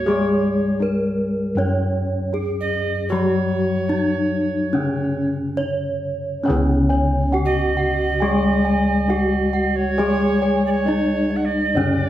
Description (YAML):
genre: Javanese gamelan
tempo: 68-83 BPM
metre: 4/4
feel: straight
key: C# pelog barang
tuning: A4 = 442 Hz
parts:
  - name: gamelan-type bronze metallophone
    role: melody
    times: 0.0-12.1 s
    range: C#4 to C#5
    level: -23 LUFS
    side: equal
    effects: none
  - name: alto recorder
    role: second line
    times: 0.0-12.1 s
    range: C#5 to F#5+26c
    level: -25 LUFS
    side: right 4 dB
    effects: none
  - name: gamelan-type bronze metallophone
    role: accompaniment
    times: 0.0-12.1 s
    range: C#3 to C#4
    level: -22 LUFS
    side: left 2 dB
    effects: none
  - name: gamelan-type bossed gongs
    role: bass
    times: 0.0-12.1 s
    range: C#2 to G#4-40c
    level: -24 LUFS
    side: equal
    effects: none
  - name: gamelan-type bossed gongs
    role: arpeggios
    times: 6.5-12.1 s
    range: C#5 to G#5-40c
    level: -30 LUFS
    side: left 3 dB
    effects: none
  - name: gamelan-type bronze metallophone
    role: arpeggios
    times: 6.5-12.1 s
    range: C#5 to G#5-40c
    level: -28 LUFS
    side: right 3 dB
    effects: none
room: wet recital hall reverb, RT60 1.4 s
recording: recorded in a church or concert hall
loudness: -18 LUFS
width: side -13 dB against mid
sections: 0.0-6.5 A section; 6.5-12.1 B section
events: none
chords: none